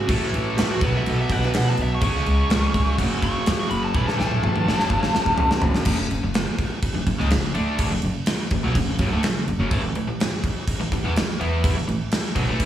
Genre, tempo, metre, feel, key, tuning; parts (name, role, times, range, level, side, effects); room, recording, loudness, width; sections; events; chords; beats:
hard rock; 125 BPM; 4/4; straight; F# minor; A4 = 440 Hz
bluesy overdriven lead guitar; melody; 0.0-5.6 s; F#4 to C#6; -26 LUFS; equal; distortion, slapback echo
cranked stack guitar; riff; 0.0-12.7 s; F#2 to E4; -26 LUFS; equal; overdrive, slapback echo
upright bass; bass; 0.1-12.7 s; F#1 to B2; -25 LUFS; equal
gated 80s drum kit; drums; 0.1-12.7 s; crash cymbal, kick drum, snare drum, toms; -24 LUFS; equal
moderate lush hall reverb, RT60 2.1 s; big arena sound, small room ambience; -20 LUFS; side -11 dB against mid
0.0-5.9 A section; 5.9-12.7 B section
lead electric guitar solo 0.0-5.9; drum fill 3.9-5.9
0.1 A5; 0.8 B5; 2.0 C#5; 3.0 F#5; 3.9 A5; 4.7 F#m; 9.7 A5
| 0.09 0.57 1.05 1.54 | 2.02 2.50 2.98 3.46 | 3.94 4.43 4.91 5.39 | 5.87 6.35 6.83 7.32 | 7.80 8.28 8.76 9.24 | 9.72 10.20 10.68 11.16 | 11.64 12.12 12.60